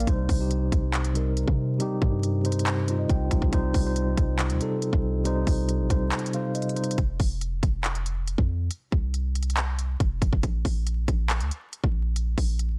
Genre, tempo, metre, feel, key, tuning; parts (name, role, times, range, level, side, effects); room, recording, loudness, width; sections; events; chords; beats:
hip hop, trap; 139 BPM; 4/4; half-time; A4 = 435 Hz
mellow tine electric piano; accompaniment; 0.0-7.0 s; C3 to G5; -29 LUFS; equal
warm 808-style bass; bass; 0.0-12.8 s; F1 to C3; -29 LUFS; equal
trap drum kit; drums; 0.0-12.7 s; handclaps, hi-hat, kick drum; -29 LUFS; equal; vintage 12-bit sampler grit
digital ambience; dense, heavily limited modern master, vinyl crackle; -26 LUFS; mono
0.0-12.8 A section
break 6.1-7.0, 7.0-12.8
0.1 Cm; 7.0 F5; 10.4 N.C.
| 0.07 0.51 0.94 1.37 | 1.80 2.23 2.66 3.10 | 3.53 3.96 4.39 4.82 | 5.25 5.68 6.12 6.55 | 6.98 7.41 7.84 8.28 | 8.71 9.14 9.57 10.00 | 10.43 10.87 11.30 11.73 | 12.16 12.59